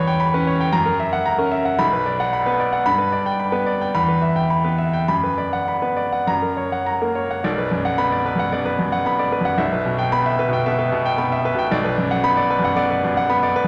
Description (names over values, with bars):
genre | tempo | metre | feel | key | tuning
classical, virtuoso piano study | 99-116 BPM | 4/4 | rubato | B minor | A4 = 439 Hz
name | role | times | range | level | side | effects
clear concert grand piano | solo | 0.0-13.7 s | B1 to B5 | -20 LUFS | equal | none
room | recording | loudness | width
wet concert hall reverb, RT60 2.2 s | none | -20 LUFS | mono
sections
0.0-7.4 A section; 7.4-13.7 B section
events
none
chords
0.0 C#m7b5/E; 0.7 F#7; 1.8 Bm; 2.9 G; 3.9 Em; 5.1 Bm/F#; 6.3 F#; 7.4 Bm; 9.6 Em/B; 11.7 Bm